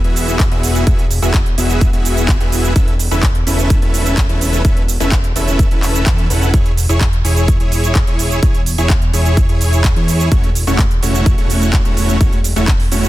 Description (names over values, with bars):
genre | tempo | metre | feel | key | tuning
EDM, festival progressive house | 127 BPM | 4/4 | straight | unclear | A4 = 440 Hz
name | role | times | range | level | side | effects
dense compressed supersaw | riff | 0.0-13.1 s | A3 to F#5 | -19 LUFS | equal | sidechain pumping, digital delay
fat analog bass | bass | 0.0-13.1 s | E1 to E2 | -17 LUFS | equal | sidechain pumping
big-room dance drum kit | drums | 0.0-13.1 s | handclaps, hi-hat, shaker | -22 LUFS | right 2 dB | none
electronic kick drum | drums | 0.4-12.8 s | none | -14 LUFS | equal | none
room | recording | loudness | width
digital ambience | dense, heavily limited modern master | -12 LUFS | side -16 dB against mid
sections
0.0-13.1 A section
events
none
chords
0.0 Eadd9; 2.8 Aadd9/E; 6.5 C#m/E; 10.3 F#m7/E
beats
0.40 | 0.87 1.34 1.81 2.29 | 2.76 3.23 3.70 4.18 | 4.65 5.12 5.59 6.07 | 6.54 7.01 7.48 7.96 | 8.43 8.90 9.37 9.85 | 10.32 10.79 11.26 11.73 | 12.21 12.68